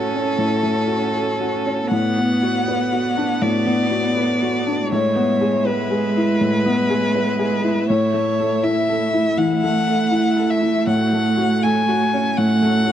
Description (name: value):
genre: neoclassical piano and strings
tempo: 80 BPM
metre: 4/4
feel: rubato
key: A major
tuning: A4 = 440 Hz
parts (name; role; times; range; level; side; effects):
- clear violin; melody; 0.0-12.9 s; A4 to G#5; -22 LUFS; left 2 dB; none
- rich cello; second line; 0.0-12.9 s; G#3 to C#4; -23 LUFS; right 8 dB; none
- felt-muted upright piano; accompaniment; 0.0-12.9 s; A2 to B4; -20 LUFS; left 2 dB; none
- warm symphonic string section; sustained chords; 0.0-12.9 s; G#3 to E5; -29 LUFS; right 1 dB; none
room: light reverb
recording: worn, warbling old tape, cassette tape, warbly pitch drift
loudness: -16 LUFS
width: side -10 dB against mid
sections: 0.0-12.9 A section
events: none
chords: 0.0 F#m/A; 1.9 Bm/A; 4.9 E/A; 7.9 A; 10.9 F#m/A